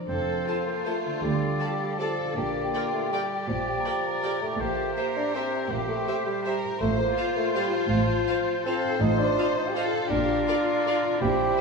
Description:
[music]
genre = classical, orchestral ballroom waltz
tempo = 162 BPM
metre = 3/4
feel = uneven beats, rubato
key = F major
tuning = A4 = 440 Hz
[part]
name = concert harp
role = arpeggios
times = 0.0-11.6 s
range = A2 to C5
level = -35 LUFS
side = left 2 dB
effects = none
[part]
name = rich chamber violin section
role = melody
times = 0.1-11.6 s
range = E4 to C5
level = -32 LUFS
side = left 3 dB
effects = none
[part]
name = clear oboe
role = second line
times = 0.1-11.6 s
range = Bb4 to D5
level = -34 LUFS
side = equal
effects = none
[part]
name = concert flute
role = second line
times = 0.1-11.6 s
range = E5 to G5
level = -37 LUFS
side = left 2 dB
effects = none
[part]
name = warm clarinet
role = second line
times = 0.1-11.6 s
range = F4-21c to A4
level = -34 LUFS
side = left 4 dB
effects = none
[part]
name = warm bassoon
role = accompaniment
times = 0.1-11.6 s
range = F3 to G4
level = -28 LUFS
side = right 2 dB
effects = none
[part]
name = rich chamber cello section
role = bass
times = 0.1-11.5 s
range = D2 to Bb2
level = -32 LUFS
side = right 2 dB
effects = none
[part]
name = warm symphonic double bass section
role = bass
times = 0.1-11.5 s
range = F1 to D2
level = -33 LUFS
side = right 3 dB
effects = none
[part]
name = rich chamber violin section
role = second line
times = 0.5-11.6 s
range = C5 to A5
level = -37 LUFS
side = left 2 dB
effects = none
[part]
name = rich chamber viola section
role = accompaniment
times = 0.5-11.6 s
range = F4 to C5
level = -37 LUFS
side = left 1 dB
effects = none
[sound]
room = wet scoring stage reverb, RT60 1.8 s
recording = studio ambience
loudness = -24 LUFS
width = side -4 dB against mid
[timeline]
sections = 0.1-11.6 A section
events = none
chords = 0.1 F; 1.2 Dm; 2.4 Gm7/Bb; 4.6 C7/Bb; 6.8 F/A; 9.0 F7/A; 10.1 Bb

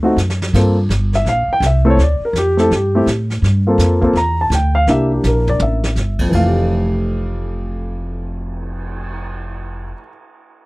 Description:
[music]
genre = jazz piano trio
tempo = 166 BPM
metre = 4/4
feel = swing 63% on 8ths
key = F major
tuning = A4 = 439 Hz
[part]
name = dark upright piano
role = melody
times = 0.0-10.1 s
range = F2 to Bb5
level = -17 LUFS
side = equal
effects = none
[part]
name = upright bass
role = bass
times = 0.0-9.9 s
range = F1 to A2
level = -17 LUFS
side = equal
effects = none
[part]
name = vintage brush drum kit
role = drums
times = 0.2-9.1 s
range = brushed snare drum, crash cymbal, cymbal swell, hi-hat, kick drum, snare drum, toms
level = -25 LUFS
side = equal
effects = none
[sound]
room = little or no reverb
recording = dry, close 1970s-style studio recording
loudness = -13 LUFS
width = side -22 dB against mid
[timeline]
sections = 0.5-6.3 A section; 6.3-9.2 B section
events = drum fill 0.2-0.5, 5.2-6.0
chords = 0.0 D7b9; 0.5 Gm11; 2.0 Dsus4; 3.4 Gm11; 4.9 C7; 6.3 Fmaj9

